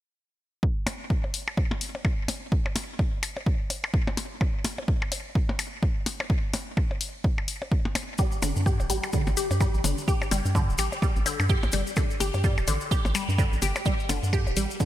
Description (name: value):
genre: minimal techno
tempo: 127 BPM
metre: 4/4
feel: swing 58% on 16ths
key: G minor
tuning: A4 = 440 Hz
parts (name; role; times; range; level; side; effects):
- electronic kick drum; drums; 0.6-14.9 s; none; -26 LUFS; equal; none
- electronic hi-hat; drums; 0.9-14.7 s; none; -34 LUFS; left 4 dB; none
- percussion blips; percussion; 0.9-14.9 s; none; -34 LUFS; left 1 dB; digital delay
- resonant blip pluck; riff; 8.2-14.9 s; D3 to G4; -29 LUFS; equal; phaser, sidechain pumping, digital delay
- cabasa; percussion; 8.2-14.9 s; none; -36 LUFS; left 3 dB; none
- rubbery square bass; bass; 8.4-14.7 s; D1 to G2; -27 LUFS; equal; sidechain pumping
room: light reverb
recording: bright 1980s-style digital production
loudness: -24 LUFS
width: side -13 dB against mid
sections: 0.6-14.9 A section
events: none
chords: 0.6 G5